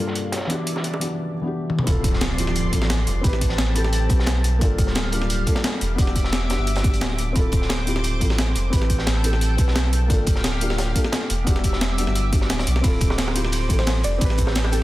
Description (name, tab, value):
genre	liquid drum and bass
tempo	175 BPM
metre	4/4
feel	straight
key	D minor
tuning	A4 = 440 Hz
part	felt-muted upright piano	accompaniment	0.0-14.8 s	G2 to B4	-27 LUFS	left 1 dB	tape echo
part	lush unison pad	sustained chords	0.0-14.8 s	F3 to D6	-30 LUFS	equal	chorus, sidechain pumping
part	crunchy breakbeat drum kit	drums	0.1-14.8 s	hi-hat, snare drum	-32 LUFS	equal	high-pass filter on hats, low-pass filter on hats, studio ambience, high-pass filter on snare, low-pass filter on snare, high-pass filter on room, low-pass filter on room
part	breakbeat sampler-style drum kit	drums	0.2-14.8 s	hi-hat, ride cymbal, snare drum, toms	-26 LUFS	equal	studio ambience
part	bongos	percussion	0.8-1.0, 13.1-14.7 s	none	-32 LUFS	right 3 dB	none
part	warm sub bass	bass	1.9-14.8 s	D1 to B1	-22 LUFS	equal	none
part	electronic kick drum	drums	1.9-14.5 s	none	-21 LUFS	equal	studio ambience
part	impact	sound effects	1.9-3.2 s	none	-30 LUFS	equal	none
part	bell-like FM electric piano	melody	13.8-14.8 s	G4 to D5	-30 LUFS	equal	chorus, tremolo, dub echo
room	light reverb, studio ambience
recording	dense, heavily limited modern master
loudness	-19 LUFS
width	side -16 dB against mid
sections	0.0-1.9 A section; 1.9-14.8 B section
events	filter sweep on drum 0.0-1.9; drum fill 1.7; drop 1.9-14.8; impact 1.9-3.2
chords	0.3 Em7; 1.9 Dm7; 3.2 Am7; 4.6 Gm7; 5.8 Em7; 7.4 Dm7; 8.7 Am7; 10.1 Gm7; 11.3 Em7; 12.8 Dm7; 14.2 Am7